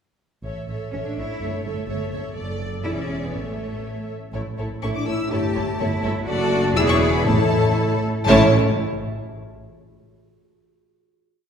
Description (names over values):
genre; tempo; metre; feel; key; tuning
quick classical-period movement for symphony orchestra; 123 BPM; 2/4; rubato; A major; A4 = 440 Hz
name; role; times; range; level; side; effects
rich chamber violin section; melody; 0.4-8.5 s; D5 to E6; -30 LUFS; left 5 dB; none
rich chamber violin section; second line; 0.4-8.5 s; E4 to D5; -27 LUFS; left 2 dB; none
rich chamber viola section; accompaniment; 0.4-8.5 s; A3 to A4; -27 LUFS; right 1 dB; none
rich chamber double bass section; bass; 0.4-8.5 s; E1 to A1; -26 LUFS; right 2 dB; none
clear chamber cello section; bass; 0.9-8.5 s; A2 to A4; -26 LUFS; right 1 dB; none
mellow French horn section; sustained chords; 4.8-8.5 s; A3 to E4; -25 LUFS; left 3 dB; none
timpani; percussion; 7.3-8.5 s; A2; -24 LUFS; right 1 dB; none
room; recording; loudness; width
wet concert hall reverb, RT60 1.9 s; heard from further back in the room; -19 LUFS; side -7 dB against mid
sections
0.4-4.3 A section; 4.3-8.3 A section; 8.3-9.3 final chord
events
none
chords
0.4 A; 1.4 A7/G; 2.3 D/F#; 2.8 E7; 3.3 A; 5.3 A7/G; 6.3 D/F#; 6.8 E7; 7.3 A